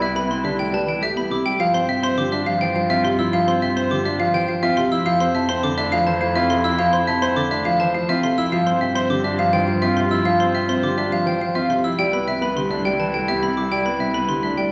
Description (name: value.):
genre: classical, minimalist pattern music.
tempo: 104 BPM.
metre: 3/4.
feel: straight.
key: G mixolydian.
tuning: A4 = 438 Hz.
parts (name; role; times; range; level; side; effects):
marimba with medium mallets; melody; 0.0-14.7 s; G4 to A5; -28 LUFS; equal; none.
warm clarinet; second line; 0.0-14.7 s; E4 to F4; -30 LUFS; equal; none.
dark concert grand piano; accompaniment; 0.0-14.7 s; C3 to C4; -26 LUFS; equal; none.
clear concert grand piano; arpeggios; 0.0-14.6 s; D4 to C5; -28 LUFS; equal; none.
xylophone with wooden mallets; arpeggios; 0.0-14.7 s; E5 to E6; -26 LUFS; equal; none.
rich cello; bass; 0.0-14.7 s; C2 to G2; -31 LUFS; equal; none.
room: wet scoring stage reverb, RT60 1.6 s.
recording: none.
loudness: -20 LUFS.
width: mono.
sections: 0.0-1.6 A section; 1.6-14.7 B section.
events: none.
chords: 0.0 Cmaj9; 1.6 G7sus4; 5.1 Fmaj7; 8.5 G7sus4; 12.0 Cmaj9.